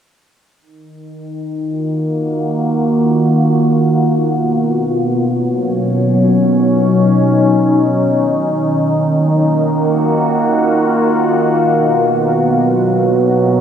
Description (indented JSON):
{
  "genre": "ambient",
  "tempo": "free time",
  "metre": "none",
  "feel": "none",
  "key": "Eb minor",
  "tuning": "A4 = 440 Hz",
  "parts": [
    { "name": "evolving wavetable pad", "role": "sustained chords", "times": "1.3-13.6 s", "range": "B2 to Gb4", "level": "-12 LUFS", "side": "equal", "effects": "phaser, built-in reverb" }
  ],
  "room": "wet huge ambient reverb, RT60 8.1 s",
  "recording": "dreamy mix soaked in reverb",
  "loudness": "-12 LUFS",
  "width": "side -8 dB against mid",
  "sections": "0.6-13.6 A section",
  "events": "filter sweep on ambient pad 0.6-13.6",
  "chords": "0.6 Ebm; 4.3 Bmaj7; 8.0 Ebm7; 11.7 Bmaj7(no3)"
}